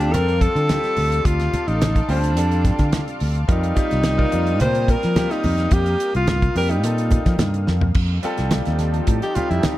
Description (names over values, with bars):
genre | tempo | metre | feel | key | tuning
electric jazz fusion | 107 BPM | 4/4 | straight | unclear | A4 = 442 Hz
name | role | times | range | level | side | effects
clear alto saxophone | melody | 0.0-9.8 s | D4 to C5 | -22 LUFS | left 1 dB | slapback echo
clear concert grand piano | accompaniment | 0.0-9.8 s | G3 to C5 | -27 LUFS | equal | none
analog string pad | sustained chords | 0.0-9.8 s | F3 to Eb6 | -31 LUFS | left 1 dB | ensemble chorus
fretless electric bass | bass | 0.0-9.7 s | A1 to F3 | -20 LUFS | equal | none
damped 70s drum kit | drums | 0.0-9.8 s | crash cymbal, hi-hat, kick drum, snare drum, toms | -22 LUFS | equal | none
congas | percussion | 0.1-9.8 s | none | -26 LUFS | right 1 dB | none
room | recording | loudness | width
light reverb | none | -17 LUFS | side -15 dB against mid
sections
0.0-8.0 A section; 8.0-9.8 B section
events
drum fill 7.7; alto saxophone solo 8.0-9.8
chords
0.0 Dm7; 3.5 F7sus4; 8.0 F9